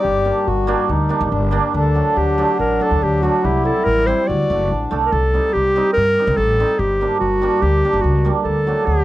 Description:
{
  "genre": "klezmer",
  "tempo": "143 BPM",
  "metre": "4/4",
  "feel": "straight",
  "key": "unclear",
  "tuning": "A4 = 440 Hz",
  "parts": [
    { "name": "warm clarinet", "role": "melody", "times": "0.0-9.0 s", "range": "F#4 to D5", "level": "-18 LUFS", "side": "equal", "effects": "none" },
    { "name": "mellow accordion", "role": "second line", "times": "0.0-5.1 s", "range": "D4 to G4", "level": "-22 LUFS", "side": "left 5 dB", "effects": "none" },
    { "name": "cimbalom", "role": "accompaniment", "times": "0.0-9.0 s", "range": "F#3 to A4", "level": "-21 LUFS", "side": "right 5 dB", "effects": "none" },
    { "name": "upright bass", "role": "bass", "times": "0.0-9.0 s", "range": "F#1 to G2", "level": "-20 LUFS", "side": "equal", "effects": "none" }
  ],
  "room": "little or no reverb",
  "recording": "dry, close 1970s-style studio recording",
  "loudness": "-15 LUFS",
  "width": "side -15 dB against mid",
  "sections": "0.0-5.1 A section; 5.1-9.0 A section",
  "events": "none",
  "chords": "0.0 Gm; 1.7 D; 3.4 C; 4.3 D; 5.1 Cm; 6.8 Gm; 8.5 D",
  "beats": "| 0.04 0.47 0.89 1.32 | 1.74 2.17 2.59 3.01 | 3.44 3.86 4.28 4.70 | 5.12 5.54 5.96 6.38 | 6.80 7.21 7.63 8.05 | 8.46 8.88"
}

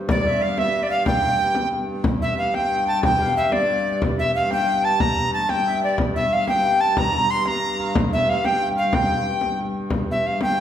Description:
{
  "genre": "medieval dance",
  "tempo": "122 BPM (dotted quarters)",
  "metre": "6/8",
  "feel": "straight",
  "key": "G dorian",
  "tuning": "A4 = 440 Hz",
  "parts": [
    { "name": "warm hurdy-gurdy", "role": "drone", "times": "0.0-10.6 s", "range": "G2", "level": "-28 LUFS", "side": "equal", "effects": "none" },
    { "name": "bright reedy tenor recorder", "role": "melody", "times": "0.1-10.6 s", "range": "D5 to C6", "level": "-21 LUFS", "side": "left 1 dB", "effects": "none" },
    { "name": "accordion", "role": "second line", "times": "0.1-9.5 s", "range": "D5 to C6", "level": "-27 LUFS", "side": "right 4 dB", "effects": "light tremolo tuning" },
    { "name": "frame drum", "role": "percussion", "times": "0.1-10.6 s", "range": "none", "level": "-25 LUFS", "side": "left 1 dB", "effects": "none" }
  ],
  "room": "wet recital hall reverb, RT60 1.6 s",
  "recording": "heard from further back in the room",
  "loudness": "-18 LUFS",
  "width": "side -10 dB against mid",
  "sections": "0.0-2.1 A section; 2.1-9.9 B section",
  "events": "none",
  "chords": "none",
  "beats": "| 0.08 0.57 | 1.07 1.56 | 2.05 2.54 | 3.04 3.53 | 4.02 4.51 | 5.00 5.50 | 5.99 6.48 | 6.97 7.46 | 7.95 8.44 | 8.94 9.43 | 9.92 10.41"
}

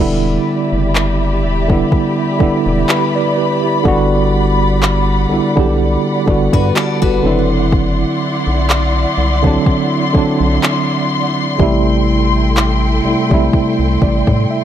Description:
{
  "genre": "contemporary R&B",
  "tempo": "62 BPM",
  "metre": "4/4",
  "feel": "swing 54% on 16ths",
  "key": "E minor",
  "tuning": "A4 = 439 Hz",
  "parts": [
    { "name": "tine electric piano", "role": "accompaniment", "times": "0.0-14.6 s", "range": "C3 to E5", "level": "-15 LUFS", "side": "right 2 dB", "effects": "fast stereo tremolo" },
    { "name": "warm studio string section", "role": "sustained chords", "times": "0.0-14.6 s", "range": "G3 to C6", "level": "-19 LUFS", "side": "left 3 dB", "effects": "none" },
    { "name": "rubbery square bass", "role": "bass", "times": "0.0-14.5 s", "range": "E1 to A2", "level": "-17 LUFS", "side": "left 1 dB", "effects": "none" },
    { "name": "smooth R&B drum kit", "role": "drums", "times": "1.0-14.5 s", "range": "handclaps, kick drum", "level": "-16 LUFS", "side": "left 1 dB", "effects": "overdrive" },
    { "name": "picked steel-string acoustic guitar", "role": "arpeggios", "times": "6.5-7.5 s", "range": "F#4 to D5", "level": "-21 LUFS", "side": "left 8 dB", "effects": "ping-pong delay" }
  ],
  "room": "digital ambience",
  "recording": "none",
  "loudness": "-12 LUFS",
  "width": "side -10 dB against mid",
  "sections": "0.0-14.6 A section",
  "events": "tine electric piano fill 13.5-14.6",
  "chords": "0.0 Em7; 3.9 Gmaj7; 7.2 D9/F#; 11.6 Am7",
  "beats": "0.95 1.92 2.88 | 3.85 4.82 5.79 6.76 | 7.72 8.69 9.66 10.63 | 11.59 12.56 13.53 14.50"
}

